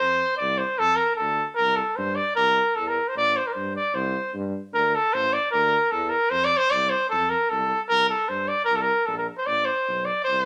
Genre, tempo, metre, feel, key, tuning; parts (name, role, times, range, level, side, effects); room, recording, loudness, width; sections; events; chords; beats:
balkan folk; 152 BPM; 2/4; swing 54% on 16ths; C mixolydian; A4 = 440 Hz
warm trumpet; melody; 0.0-10.5 s; A4 to D5; -23 LUFS; equal
warm tuba; bass; 0.0-10.5 s; A1 to G2; -36 LUFS; equal
moderate studio reverb, RT60 0.9 s; -23 LUFS; mono
0.0-4.8 A section; 4.8-10.5 A section
0.0 F5; 1.6 C; 3.2 Bbmaj13/A (rootless); 4.0 C5; 4.8 D5; 6.3 F5; 7.9 C5; 9.5 Am
| 0.00 0.40 | 0.80 1.19 | 1.59 1.98 | 2.38 2.77 | 3.17 3.56 | 3.96 4.36 | 4.75 5.15 | 5.54 5.94 | 6.33 6.73 | 7.12 7.52 | 7.91 8.30 | 8.70 9.09 | 9.49 9.88 | 10.27